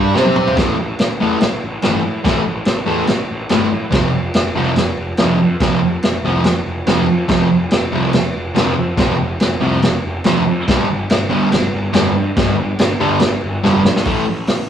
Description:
garage rock duo or trio; 142 BPM; 4/4; straight; A minor; A4 = 440 Hz
fuzz guitar; riff; 0.0-14.2 s; F2 to C5; -17 LUFS; equal; distortion
fuzz picked electric bass; bass; 0.0-14.7 s; F1 to C3; -23 LUFS; equal; overdrive
vintage drum kit; drums; 0.2-14.6 s; crash cymbal, hi-hat, kick drum, snare drum, toms; -17 LUFS; equal
moderate stone room reverb, RT60 1.3 s; rough rehearsal-room recording, tube saturation, small room ambience; -14 LUFS; side -9 dB against mid
0.6-14.1 A section
drum fill 0.2-0.6, 13.6-14.1
0.2 C5; 0.6 A5; 3.9 F5; 10.7 G5; 14.1 A5

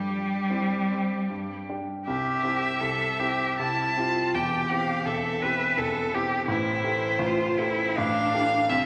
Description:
classical, slow romantic movement for piano trio; 82 BPM; 3/4; uneven beats, rubato; C major; A4 = 440 Hz
rich violin; melody; 0.0-8.9 s; G4 to A5; -31 LUFS; equal
rich cello; second line; 0.0-8.9 s; G3 to B4; -29 LUFS; equal
clear concert grand piano; accompaniment; 0.0-8.9 s; E1 to G4; -33 LUFS; equal
wet scoring stage reverb, RT60 2.0 s; -26 LUFS; mono
0.0-2.1 A section; 2.1-8.9 B section
0.0 C/G; 1.3 G5; 2.1 C; 4.3 C/E; 6.5 Am7

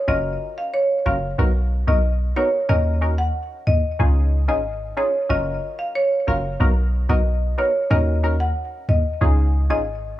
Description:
dancehall; 92 BPM; 4/4; straight; Eb minor; A4 = 440 Hz
marimba with medium hard mallets; melody; 0.1-9.8 s; Db5 to Gb5; -23 LUFS; equal; tape echo
wavetable chord stab; accompaniment; 0.1-9.8 s; B3 to Bb4; -26 LUFS; left 1 dB
warm 808-style bass; bass; 0.1-10.2 s; Gb1 to Eb2; -19 LUFS; equal
studio ambience; small room ambience; -18 LUFS; side -14 dB against mid
0.0-10.2 A section
0.1 Gbmaj7; 1.4 Bmaj7; 2.7 Ebm7; 4.0 Dbadd9; 5.3 Gbmaj7; 6.6 Bmaj7; 7.9 Ebm7; 9.2 Dbadd9

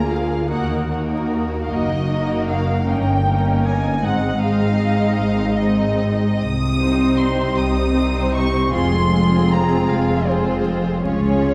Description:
classical, slow romantic movement for string orchestra; 51 BPM (dotted quarters); 6/8; rubato; A4 = 440 Hz
rich symphonic violin section; melody; 0.0-11.5 s; C5 to Eb6; -28 LUFS; equal
clear symphonic violin section; second line; 0.0-11.5 s; Eb4 to Eb5; -28 LUFS; equal
rich symphonic viola section; accompaniment; 0.0-11.5 s; G3 to F4; -25 LUFS; equal
rich symphonic cello section; bass; 0.0-11.5 s; Db2 to C3; -24 LUFS; equal
rich symphonic double bass section; bass; 0.0-11.5 s; F1 to Eb2; -26 LUFS; equal
wet concert hall reverb, RT60 1.8 s; dark, warm production, vinyl crackle; -19 LUFS; mono
0.0-11.5 A section
0.0 Bb7/D; 0.5 Ebm; 1.7 Ebm/Gb; 2.9 Eb7/G; 4.0 Ab; 6.4 Cm; 8.7 Fm; 11.0 Db

